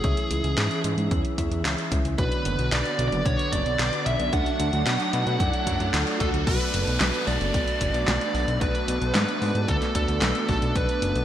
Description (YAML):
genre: synthwave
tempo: 112 BPM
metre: 4/4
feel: straight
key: B dorian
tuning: A4 = 441 Hz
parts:
  - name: smooth overdriven lead guitar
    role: melody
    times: 0.0-11.2 s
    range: G#4 to F#5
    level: -28 LUFS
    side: equal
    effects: digital delay
  - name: warm analog pad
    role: sustained chords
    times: 0.0-11.2 s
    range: D3 to D4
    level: -32 LUFS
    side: right 1 dB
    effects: chorus, sidechain pumping
  - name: chorused polysynth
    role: stabs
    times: 0.0-11.2 s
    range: C#4 to F#5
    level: -32 LUFS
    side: right 1 dB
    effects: none
  - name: fat analog bass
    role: bass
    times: 0.0-11.2 s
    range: F#1 to B2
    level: -27 LUFS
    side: equal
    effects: tube saturation
  - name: electronic kick drum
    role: drums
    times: 0.0-10.9 s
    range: none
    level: -28 LUFS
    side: equal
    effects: studio reverb
  - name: pop drum kit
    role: drums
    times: 0.0-11.2 s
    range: crash cymbal, handclaps, hi-hat, snare drum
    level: -29 LUFS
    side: equal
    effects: high-pass filter on hats, studio reverb, high-pass filter on snare, high-pass filter on toms, high-pass filter on cymbals, gated reverb
  - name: riser and downlifter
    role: sound effects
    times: 1.2-10.8 s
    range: none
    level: -36 LUFS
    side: equal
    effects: none
room: moderate lush hall reverb, RT60 2.1 s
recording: bright 1980s-style digital production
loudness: -22 LUFS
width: side -11 dB against mid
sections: 0.0-6.5 A section; 6.5-11.2 B section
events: filter sweep on analog polysynth 0.0-6.5; riser 1.2-6.5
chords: 0.0 C#m; 2.2 Bmadd9; 4.3 D; 6.5 Bm7